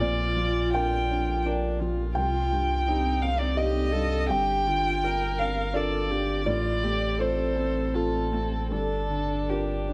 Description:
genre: neoclassical piano and strings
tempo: 82 BPM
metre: 3/4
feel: uneven beats, rubato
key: G minor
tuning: A4 = 440 Hz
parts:
  - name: dark violin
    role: melody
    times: 0.0-9.9 s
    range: G4 to G5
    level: -31 LUFS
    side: equal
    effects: none
  - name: felt-muted upright piano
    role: accompaniment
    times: 0.0-9.9 s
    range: C2 to G5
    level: -32 LUFS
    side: equal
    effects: none
  - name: warm viola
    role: accompaniment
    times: 0.0-9.9 s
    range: C4 to Bb4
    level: -34 LUFS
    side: equal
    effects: none
  - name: punchy sub bass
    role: bass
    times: 0.0-9.9 s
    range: G1 to C2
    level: -32 LUFS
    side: equal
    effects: none
room: light reverb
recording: close, detailed microphones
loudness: -26 LUFS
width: mono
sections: 0.0-9.9 A section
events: none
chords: 0.0 Bb; 2.2 Cm; 4.3 Gm7; 6.5 F/A; 8.7 Gm7

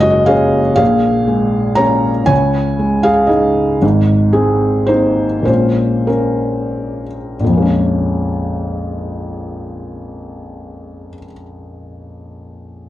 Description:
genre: neoclassical minimalist piano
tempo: 88-121 BPM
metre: 3/4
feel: rubato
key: Bb minor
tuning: A4 = 441 Hz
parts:
  - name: felt-muted upright piano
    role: solo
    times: 0.0-12.9 s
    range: Gb1 to Bb5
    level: -13 LUFS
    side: equal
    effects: slapback echo
room: little or no reverb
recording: dry, close 1970s-style studio recording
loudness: -12 LUFS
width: side -14 dB against mid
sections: 0.0-7.4 A section; 7.4-11.4 B section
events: slowing down 3.1-7.4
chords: 0.0 Gbadd9; 0.8 Bbm7; 2.3 Dbsus2; 3.8 Abadd9; 5.5 Bbm7

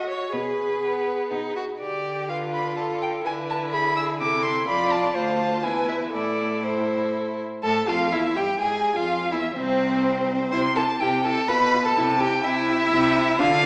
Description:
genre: quick classical-period movement for string quartet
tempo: 125 BPM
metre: 3/4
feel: straight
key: A minor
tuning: A4 = 441 Hz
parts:
  - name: rich violin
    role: melody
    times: 0.0-13.7 s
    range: B4 to E6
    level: -28 LUFS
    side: equal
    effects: none
  - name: clear violin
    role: second line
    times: 0.0-13.7 s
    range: B3 to C5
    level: -29 LUFS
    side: equal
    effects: none
  - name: rich viola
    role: accompaniment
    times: 0.0-13.7 s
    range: C4 to D5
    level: -30 LUFS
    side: equal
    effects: none
  - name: rich cello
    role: bass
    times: 0.3-13.7 s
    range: C2 to D3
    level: -32 LUFS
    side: equal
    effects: none
room: wet recital hall reverb, RT60 1.6 s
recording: heard from further back in the room, small speaker sound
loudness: -24 LUFS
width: mono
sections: 0.0-7.6 A section; 7.6-13.7 B section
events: none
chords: 0.3 G#m/B; 1.8 Bdim/D; 3.2 E7/D; 4.2 Am/C; 4.7 F; 5.1 Dm; 5.6 E; 6.1 Am; 7.6 A5; 8.6 Fm; 9.1 Cadd11; 10.5 C; 11.5 Asus2/B; 12.0 C

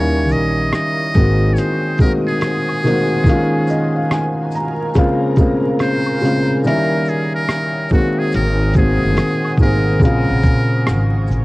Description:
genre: lo-fi hip hop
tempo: 71 BPM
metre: 4/4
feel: swing 62% on 16ths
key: unclear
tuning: A4 = 442 Hz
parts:
  - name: trumpet with metal mute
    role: melody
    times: 0.0-11.3 s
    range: Gb4 to Eb5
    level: -22 LUFS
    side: equal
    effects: none
  - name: dark upright piano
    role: accompaniment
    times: 0.0-11.4 s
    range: Db3 to Bb5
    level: -16 LUFS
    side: equal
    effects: cassette tape
  - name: granular cloud pad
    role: sustained chords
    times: 0.0-11.4 s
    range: Bb4 to Eb6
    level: -29 LUFS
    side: right 2 dB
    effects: built-in reverb, cassette tape
  - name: upright bass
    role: bass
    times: 0.0-1.5, 8.3-11.4 s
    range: Gb1 to Bb2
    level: -17 LUFS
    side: equal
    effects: none
  - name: lo-fi sampler-style drum kit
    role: drums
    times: 0.3-11.4 s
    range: hi-hat, kick drum, rim click, shaker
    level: -16 LUFS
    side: equal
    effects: vintage 12-bit sampler grit
  - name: maracas and woodblock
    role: percussion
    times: 0.3-11.4 s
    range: none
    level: -40 LUFS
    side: left 6 dB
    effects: none
room: small room reverb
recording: home recording on cassette, vinyl crackle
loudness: -14 LUFS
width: side -20 dB against mid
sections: 0.0-11.4 A section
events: upright piano fill 3.3-5.0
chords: 0.0 Eb7b9; 1.1 Ab7; 3.3 Db6; 5.0 Bbm7; 6.6 Eb7b9; 7.9 Ab7; 10.0 Bbm7

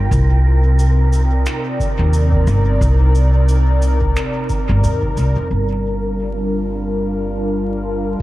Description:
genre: ambient dub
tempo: 89 BPM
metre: 4/4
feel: swing 57% on 16ths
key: C minor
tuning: A4 = 438 Hz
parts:
  - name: airy breathy pad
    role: sustained chords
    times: 0.0-8.2 s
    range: C3 to G5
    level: -21 LUFS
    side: equal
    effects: chorus
  - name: upright bass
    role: bass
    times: 0.0-8.2 s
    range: G1 to F2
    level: -15 LUFS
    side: equal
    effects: tube saturation
  - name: wind-like tuned noise texture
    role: texture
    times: 0.0-8.2 s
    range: Bb4 to F5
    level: -30 LUFS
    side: equal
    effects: built-in reverb
  - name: cabasa and finger snaps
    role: drums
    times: 0.1-5.3 s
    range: none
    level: -32 LUFS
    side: equal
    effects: low-pass filter on perc, low-pass filter on snare, low-pass filter on room, dub echo
  - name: electronic kick drum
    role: drums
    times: 0.1-5.1 s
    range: none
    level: -22 LUFS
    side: equal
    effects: none
room: light reverb, small room ambience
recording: echo-heavy mix, vinyl crackle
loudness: -14 LUFS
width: side -17 dB against mid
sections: 0.0-5.5 A section; 5.5-8.2 B section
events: none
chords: 0.1 Cm7; 5.5 Gm7

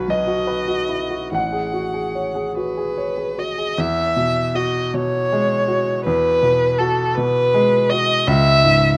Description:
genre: neoclassical piano and strings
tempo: 48-55 BPM (dotted quarters)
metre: 6/8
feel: rubato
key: E major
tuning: A4 = 441 Hz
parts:
  - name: muted violin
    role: melody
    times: 0.0-9.0 s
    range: A4 to F#5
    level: -21 LUFS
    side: equal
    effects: none
  - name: warm grand piano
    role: accompaniment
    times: 0.0-9.0 s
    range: A1 to F#5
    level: -23 LUFS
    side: equal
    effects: none
room: little or no reverb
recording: none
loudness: -19 LUFS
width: mono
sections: 0.0-3.8 A section; 3.8-9.0 B section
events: none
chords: 0.0 B; 1.3 F#madd9/A; 3.8 Eadd9; 8.3 C#m

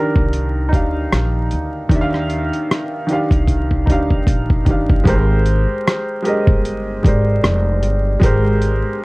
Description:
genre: lo-fi hip hop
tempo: 76 BPM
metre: 4/4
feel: swing 59% on 16ths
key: Ab lydian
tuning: A4 = 440 Hz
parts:
  - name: felt-muted upright piano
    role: accompaniment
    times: 0.0-9.0 s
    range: Eb3 to G5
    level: -20 LUFS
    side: equal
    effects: cassette tape, plate reverb
  - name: upright bass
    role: bass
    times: 0.2-8.8 s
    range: F1 to Eb2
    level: -18 LUFS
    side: equal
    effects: none
  - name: dusty soul sampler-style drum kit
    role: drums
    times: 0.2-8.8 s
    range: hi-hat, kick drum, rim click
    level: -16 LUFS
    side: equal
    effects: overdrive
  - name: vibraphone with soft mallets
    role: melody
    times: 5.1-8.2 s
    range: C5 to D5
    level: -24 LUFS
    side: equal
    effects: analog delay
room: light reverb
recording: dark, warm production, vinyl crackle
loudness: -14 LUFS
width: side -24 dB against mid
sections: 0.0-5.1 A section; 5.1-9.0 B section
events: drum fill 3.5-5.1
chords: 0.0 Ebmaj9; 5.1 Abmaj9

